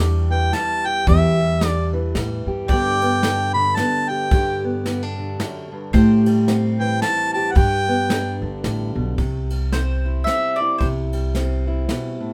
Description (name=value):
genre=acoustic folk duo or small band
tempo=111 BPM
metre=3/4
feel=swing 59% on 8ths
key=unclear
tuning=A4 = 440 Hz
part: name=mandolin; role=second line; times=0.0-10.9 s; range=B4 to E5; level=-27 LUFS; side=equal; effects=none
part: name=fingerpicked steel-string acoustic guitar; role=accompaniment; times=0.0-12.3 s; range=E2 to G4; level=-28 LUFS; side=equal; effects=none
part: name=upright bass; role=bass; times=0.0-11.8 s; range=G1 to A2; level=-23 LUFS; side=equal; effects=none
part: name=mellow harmonica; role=melody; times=0.3-8.4 s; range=E5 to B5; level=-23 LUFS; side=equal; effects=none
part: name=soft brush drum kit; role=drums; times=0.5-12.0 s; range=kick drum, ride cymbal, snare drum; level=-25 LUFS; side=equal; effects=none
room=light reverb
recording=none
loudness=-20 LUFS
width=mono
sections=0.0-9.2 A section; 9.2-12.3 B section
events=mandolin solo 9.2-12.3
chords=0.0 Em7; 2.7 G; 5.9 Am7; 7.6 Gadd9; 9.2 C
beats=0.53 | 1.07 1.61 2.15 | 2.69 3.23 3.77 | 4.32 4.86 5.40 | 5.94 6.48 7.02 | 7.56 8.10 8.64 | 9.18 9.72 10.26 | 10.80 11.35 11.89